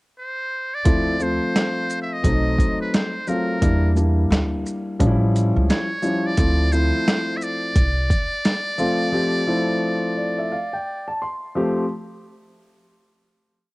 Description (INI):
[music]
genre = hip hop, jazz-hop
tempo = 87 BPM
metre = 4/4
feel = swing 62% on 16ths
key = D minor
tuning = A4 = 440 Hz
[part]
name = trumpet with metal mute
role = melody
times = 0.2-11.2 s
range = Bb4 to E5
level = -26 LUFS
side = equal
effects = cassette tape
[part]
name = dark grand piano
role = accompaniment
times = 0.8-11.9 s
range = F3 to C6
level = -22 LUFS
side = left 1 dB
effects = cassette tape
[part]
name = upright bass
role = bass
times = 0.9-8.1 s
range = A1 to E2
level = -20 LUFS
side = equal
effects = none
[part]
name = dusty soul sampler-style drum kit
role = drums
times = 0.9-9.0 s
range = hi-hat, kick drum, shaker, snare drum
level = -21 LUFS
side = equal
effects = overdrive
[sound]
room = light reverb, small room ambience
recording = home recording on cassette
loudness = -19 LUFS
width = side -22 dB against mid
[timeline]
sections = 0.0-0.9 pickup bar; 0.9-11.9 A section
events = grand piano fill 9.8-11.9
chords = 0.0 N.C.; 0.9 Dm9; 2.2 B7b9; 3.6 Em7b5; 5.0 A7b13; 6.4 Dm9